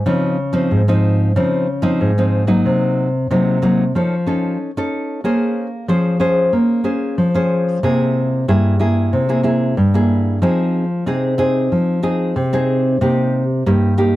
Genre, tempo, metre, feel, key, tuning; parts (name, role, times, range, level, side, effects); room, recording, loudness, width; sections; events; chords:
samba; 93 BPM; 4/4; straight; A4 = 441 Hz
nylon-string guitar; solo; 0.0-14.2 s; G2 to C5; -14 LUFS; equal
light reverb; -14 LUFS; side -16 dB against mid
0.0-14.2 A section
0.1 Dbmaj9; 2.6 Cm7b5; 3.9 F7b13; 5.2 Bbm9; 7.8 C7b13; 10.4 Fm7; 13.0 Cm7